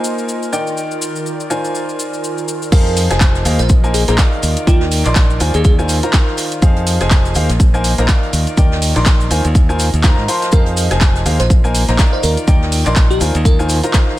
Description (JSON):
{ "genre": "piano house", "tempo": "123 BPM", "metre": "4/4", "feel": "swing 57% on 16ths", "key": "unclear", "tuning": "A4 = 440 Hz", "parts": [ { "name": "bright upright piano", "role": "riff", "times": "0.0-14.2 s", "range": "Eb3 to C6", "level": "-20 LUFS", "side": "equal", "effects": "sidechain pumping, dub echo" }, { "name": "house drum kit", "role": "drums", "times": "0.0-14.1 s", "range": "crash cymbal, handclaps, hi-hat, shaker", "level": "-21 LUFS", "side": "equal", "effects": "overdrive" }, { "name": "airy breathy pad", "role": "texture", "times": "0.0-14.2 s", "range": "Eb3 to Eb5", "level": "-28 LUFS", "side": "right 1 dB", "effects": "chorus, sidechain pumping" }, { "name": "bell-like FM electric piano", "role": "melody", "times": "2.7-5.7, 10.5-13.9 s", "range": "F4 to C5", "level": "-22 LUFS", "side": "right 1 dB", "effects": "chorus, phaser, cassette tape, dub echo" }, { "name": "modern bright fingered electric bass", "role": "bass", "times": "2.7-13.8 s", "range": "F1 to Ab2", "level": "-16 LUFS", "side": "equal", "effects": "sidechain pumping" }, { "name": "electronic kick drum", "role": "drums", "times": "2.7-14.1 s", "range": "none", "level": "-12 LUFS", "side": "equal", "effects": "none" }, { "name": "jazz brush drum kit", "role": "drums", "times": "2.7-14.2 s", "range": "hi-hat, shaker, snare drum", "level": "-28 LUFS", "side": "equal", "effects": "none" } ], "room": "small room ambience", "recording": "none", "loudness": "-12 LUFS", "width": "side -15 dB against mid", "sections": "0.0-2.7 A section; 2.7-14.2 B section", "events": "drop 2.7-14.2", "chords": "0.0 Bb9sus4; 0.5 Ebmaj7; 1.5 Ab69/Eb; 2.7 Fm7; 3.7 Bb9sus4; 4.4 Ebmaj7; 5.4 Ab69/Eb; 6.6 Fm7; 7.6 Bb9sus4; 8.3 Ebmaj7; 9.3 Ab69/Eb; 10.5 Fm7; 11.5 Bb9sus4; 12.2 Ebmaj7; 13.2 Ab69/Eb" }